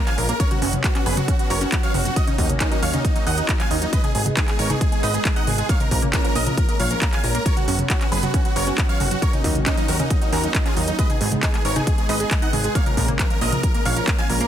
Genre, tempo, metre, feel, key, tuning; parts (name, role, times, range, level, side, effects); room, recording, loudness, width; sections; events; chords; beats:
uplifting trance; 136 BPM; 4/4; straight; G# dorian; A4 = 443 Hz
big supersaw lead; melody; 0.0-14.5 s; D#4 to G#5; -26 LUFS; right 1 dB; sidechain pumping, ping-pong delay
warm concert grand piano; second line; 0.0-14.5 s; D#5 to G#6; -32 LUFS; right 2 dB; sidechain pumping, ping-pong delay
lush unison pad; sustained chords; 0.0-14.5 s; D#3 to F#4; -29 LUFS; right 1 dB; chorus, sidechain pumping
tight sequenced synth; arpeggios; 0.1-14.5 s; E#3 to F#4; -29 LUFS; right 3 dB; chorus, sidechain pumping, ping-pong delay
techno drum kit; drums; 0.1-14.5 s; handclaps, hi-hat, toms; -25 LUFS; equal
plucky analog bass; bass; 0.2-14.4 s; F#1 to D#2; -24 LUFS; equal; tube saturation, sidechain pumping
electronic kick drum; drums; 0.4-14.2 s; -21 LUFS; equal
light reverb; dense, heavily limited modern master; -18 LUFS; side -10 dB against mid
0.0-14.5 A section
0.4 F#sus4; 2.2 D#m7; 3.9 G#m; 5.7 A#m7; 7.5 F#sus4; 9.2 D#m7; 11.0 G#m; 12.8 A#m7
| 0.40 0.84 1.28 1.72 | 2.16 2.60 3.05 3.49 | 3.93 4.37 4.81 5.25 | 5.69 6.13 6.58 7.02 | 7.46 7.90 8.34 8.78 | 9.22 9.66 10.11 10.55 | 10.99 11.43 11.87 12.31 | 12.75 13.19 13.63 14.07